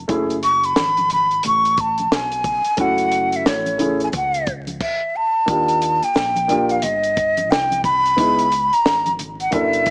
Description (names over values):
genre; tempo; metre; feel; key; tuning
hip hop, jazz-hop; 89 BPM; 4/4; swing 62% on 16ths; unclear; A4 = 443 Hz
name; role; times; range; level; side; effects
deep dub fingered electric bass; bass; 0.0-9.9 s; F#1 to D#2; -33 LUFS; equal; none
dark upright piano; accompaniment; 0.1-9.9 s; A3 to A4; -24 LUFS; equal; none
compact cocktail drum kit; drums; 0.1-9.9 s; crash cymbal, hi-hat, kick drum, snare drum; -25 LUFS; equal; none
egg shaker and congas; percussion; 0.1-9.9 s; none; -38 LUFS; equal; none
breathy jazz flute; melody; 0.4-9.9 s; C#5 to C#6; -20 LUFS; equal; none
room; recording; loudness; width
light reverb, small room ambience; vinyl crackle, small speaker sound; -19 LUFS; mono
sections
0.0-5.5 A section; 5.5-9.9 B section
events
none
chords
0.1 F#m7; 5.5 D#maj7; 8.2 C#m9